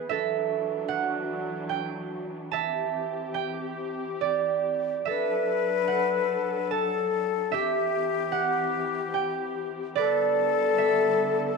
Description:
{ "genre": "celtic folk, Celtic slow air", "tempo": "74 BPM", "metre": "3/4", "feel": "rubato", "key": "D mixolydian", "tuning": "A4 = 438 Hz", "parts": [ { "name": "concert harp", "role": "accompaniment", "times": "0.0-11.6 s", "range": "G4 to A5", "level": "-28 LUFS", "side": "right 11 dB", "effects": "none" }, { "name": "muted studio string section", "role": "sustained chords", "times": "0.0-11.6 s", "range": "D3 to A4", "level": "-34 LUFS", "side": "left 1 dB", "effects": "stereo widening" }, { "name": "breathy wooden flute", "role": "second line", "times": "5.1-11.6 s", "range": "G4 to B4", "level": "-26 LUFS", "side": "left 12 dB", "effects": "none" } ], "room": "wet spring reverb, RT60 2.4 s", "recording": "1960s-style stereo with parts hard left and right", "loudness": "-24 LUFS", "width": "side -4 dB against mid", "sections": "0.0-11.6 A section", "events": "harp solo 0.0-11.6", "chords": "0.1 Dadd9; 2.5 C; 5.1 D; 7.5 C/E; 10.0 Gadd9/D" }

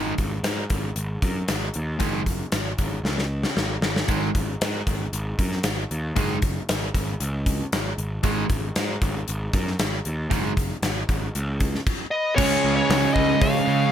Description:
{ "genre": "hard rock", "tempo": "116 BPM", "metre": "4/4", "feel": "straight", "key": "unclear", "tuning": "A4 = 440 Hz", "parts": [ { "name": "biting overdriven guitar", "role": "riff", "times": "0.0-13.9 s", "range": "G#2 to C#4", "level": "-28 LUFS", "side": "left 10 dB", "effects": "none" }, { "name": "overdriven electric guitar", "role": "riff", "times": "0.0-13.9 s", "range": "G#2 to C#4", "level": "-26 LUFS", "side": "right 12 dB", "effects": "none" }, { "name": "fuzz picked electric bass", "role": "bass", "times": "0.0-13.8 s", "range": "F#1 to C#3", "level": "-27 LUFS", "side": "equal", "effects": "overdrive" }, { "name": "gated 80s drum kit", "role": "drums", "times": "0.2-13.5 s", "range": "crash cymbal, hi-hat, kick drum, snare drum", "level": "-25 LUFS", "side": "equal", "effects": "none" }, { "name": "smooth overdriven lead guitar", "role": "melody", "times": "12.1-13.9 s", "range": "C#5 to E#5", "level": "-22 LUFS", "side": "left 2 dB", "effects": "none" }, { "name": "octave-fuzz lead guitar", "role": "second line", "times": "12.1-13.9 s", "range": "G#4 to C#5", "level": "-32 LUFS", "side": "right 2 dB", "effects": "distortion" }, { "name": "distorted electric guitar", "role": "riff", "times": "12.4-13.9 s", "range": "C#3 to C#4", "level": "-30 LUFS", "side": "equal", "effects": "none" } ], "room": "light reverb", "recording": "none", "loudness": "-22 LUFS", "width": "side -10 dB against mid", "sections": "0.0-12.4 A section; 12.4-13.9 B section", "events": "drum fill 3.0-4.1", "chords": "0.0 G#5; 12.4 C#" }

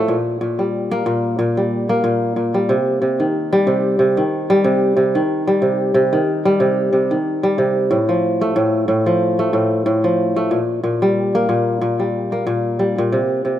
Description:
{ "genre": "folktronica", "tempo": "92 BPM", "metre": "4/4", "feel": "swing 56% on 16ths", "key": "C dorian", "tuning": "A4 = 441 Hz", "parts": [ { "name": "kora", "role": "solo", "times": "0.0-13.6 s", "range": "A2 to Bb3", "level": "-15 LUFS", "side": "equal", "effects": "none" } ], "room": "light reverb, small room ambience", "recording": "rough home demo mix", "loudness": "-15 LUFS", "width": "side -11 dB against mid", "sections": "0.0-13.1 A section", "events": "none", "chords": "0.1 Gm; 2.7 Cm; 7.9 F; 10.5 Gm" }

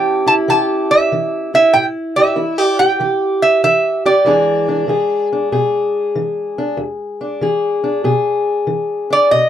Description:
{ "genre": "acoustic country blues, solo or duo", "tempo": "95 BPM", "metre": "4/4", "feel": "swing 67% on 8ths", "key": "E mixolydian", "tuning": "A4 = 438 Hz", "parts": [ { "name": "lap resonator guitar", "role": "melody", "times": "0.0-5.3, 9.1-9.5 s", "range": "D5 to A5", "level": "-13 LUFS", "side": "right 1 dB", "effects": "none" }, { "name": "fingerpicked steel-string acoustic guitar", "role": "accompaniment", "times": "0.0-9.5 s", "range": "E2 to G#4", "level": "-16 LUFS", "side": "left 1 dB", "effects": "none" } ], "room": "moderate booth ambience, RT60 0.2 s", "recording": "none", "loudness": "-13 LUFS", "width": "side -10 dB against mid", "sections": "0.0-9.5 A section", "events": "none", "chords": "0.0 A7; 4.3 E7" }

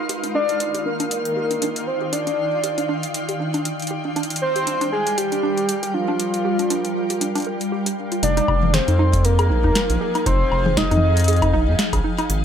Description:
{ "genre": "IDM", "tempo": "118 BPM", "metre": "4/4", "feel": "swing 56% on 16ths", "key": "F dorian", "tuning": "A4 = 444 Hz", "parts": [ { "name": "granular cloud pad", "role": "sustained chords", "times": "0.0-12.4 s", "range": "Eb3 to G5", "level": "-26 LUFS", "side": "equal", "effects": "built-in reverb" }, { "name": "twinkling granular texture", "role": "texture", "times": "0.0-8.2 s", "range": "F4 to F5", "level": "-34 LUFS", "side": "left 1 dB", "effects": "built-in reverb" }, { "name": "warbly dusty pluck", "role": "arpeggios", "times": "0.1-12.3 s", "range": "D4 to Bb4", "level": "-27 LUFS", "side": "right 2 dB", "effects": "chorus, tape echo" }, { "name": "booming analog drum machine", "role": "drums", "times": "0.1-12.4 s", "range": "hi-hat, snare drum, toms, woodblock", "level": "-25 LUFS", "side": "left 2 dB", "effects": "overdrive" }, { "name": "warbly nostalgic lead", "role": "melody", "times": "0.3-11.8 s", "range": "F4 to Eb5", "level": "-23 LUFS", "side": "equal", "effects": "chorus, digital delay" }, { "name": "round analog bass", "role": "bass", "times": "8.2-12.4 s", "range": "F1 to F2", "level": "-19 LUFS", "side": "equal", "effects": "none" }, { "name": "electronic kick drum", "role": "drums", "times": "8.5-12.0 s", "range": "none", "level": "-24 LUFS", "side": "equal", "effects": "overdrive" } ], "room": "light reverb", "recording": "none", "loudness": "-18 LUFS", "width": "side -8 dB against mid", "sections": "0.0-8.2 A section; 8.2-12.4 B section", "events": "none", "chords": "0.1 Ebmaj7; 4.2 Gm7; 8.2 Fm7" }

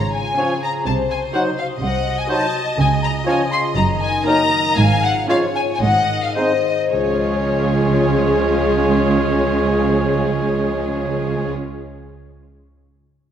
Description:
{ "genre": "cinematic", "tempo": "105-125 BPM", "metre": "4/4", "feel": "straight", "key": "Db major", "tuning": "A4 = 440 Hz", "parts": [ { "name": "warm studio violin section", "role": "melody", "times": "0.0-11.5 s", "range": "Db5 to C6", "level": "-24 LUFS", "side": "left 4 dB", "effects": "none" }, { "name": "mellow silver concert flute", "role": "second line", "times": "0.0-11.5 s", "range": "Ab4 to C6", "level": "-24 LUFS", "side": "left 1 dB", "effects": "none" }, { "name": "rich studio violin section", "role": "second line", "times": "0.0-11.5 s", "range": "F4 to F5", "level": "-27 LUFS", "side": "left 3 dB", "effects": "none" }, { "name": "concert harp", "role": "arpeggios", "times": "0.0-11.9 s", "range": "Gb2 to F5", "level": "-26 LUFS", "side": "left 7 dB", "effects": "none" }, { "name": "dark studio cello section", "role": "bass", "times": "0.0-11.5 s", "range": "Db2 to Db3", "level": "-23 LUFS", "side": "right 3 dB", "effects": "none" }, { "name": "rich studio double bass section", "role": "bass", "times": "0.0-11.5 s", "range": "Gb1 to Db2", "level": "-24 LUFS", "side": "right 4 dB", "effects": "none" }, { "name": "clear clarinet", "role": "second line", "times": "0.4-11.5 s", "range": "Db4 to F4", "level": "-27 LUFS", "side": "left 1 dB", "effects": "none" }, { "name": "warm cor anglais", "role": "second line", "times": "0.4-11.5 s", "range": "Bb4 to Db5", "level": "-28 LUFS", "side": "right 3 dB", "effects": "none" }, { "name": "mellow bassoon", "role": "accompaniment", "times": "0.4-11.5 s", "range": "F3 to Ab3", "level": "-26 LUFS", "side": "right 2 dB", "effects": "none" }, { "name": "warm studio viola section", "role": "accompaniment", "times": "0.4-11.5 s", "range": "Ab3 to Gb4", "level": "-26 LUFS", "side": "right 2 dB", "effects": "none" }, { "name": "mellow French horn section", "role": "sustained chords", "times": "0.4-11.5 s", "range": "Eb3 to Eb4", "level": "-28 LUFS", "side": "left 3 dB", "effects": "none" } ], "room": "wet scoring stage reverb, RT60 2.0 s", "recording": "none", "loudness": "-16 LUFS", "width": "side -9 dB against mid", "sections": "0.0-6.9 A section; 6.9-11.5 B section", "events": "slowing down 1.8-6.9", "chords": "0.0 Db; 0.9 Cdim7; 2.8 Db; 3.8 Ebm/Gb; 4.8 Db/Ab; 5.8 Ab; 6.9 Db" }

